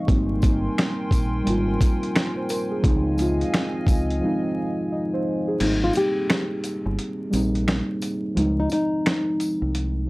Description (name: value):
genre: lo-fi hip hop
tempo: 87 BPM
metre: 4/4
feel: swing 62% on 16ths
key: Ab major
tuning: A4 = 440 Hz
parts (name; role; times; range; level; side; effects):
- muted felt-like synth keys; accompaniment; 0.0-10.1 s; F3 to Eb5; -24 LUFS; equal; chorus
- hollow soft pad; sustained chords; 0.0-5.6 s; C4 to C6; -33 LUFS; equal; chorus
- deep dub fingered electric bass; bass; 0.1-10.1 s; G1 to Db2; -25 LUFS; equal; transformer saturation
- dusty soul sampler-style drum kit; drums; 0.1-9.9 s; crash cymbal, finger snaps, hi-hat, kick drum, snare drum; -23 LUFS; equal; vintage 12-bit sampler grit
- tambourine; percussion; 0.4-9.6 s; none; -42 LUFS; left 2 dB; none
- nylon-string guitar; melody; 5.8-9.9 s; Eb4 to G4; -25 LUFS; left 1 dB; analog delay
room: little or no reverb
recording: dry, gritty hardware recording, transformer saturation, vinyl crackle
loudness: -20 LUFS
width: side -22 dB against mid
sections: 0.0-5.6 A section; 5.6-10.1 B section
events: break 4.2-5.6; kick muted 5.6-10.1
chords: 0.1 Abmaj9; 2.8 Dbmaj9; 5.6 Abmaj9; 8.4 Dbmaj9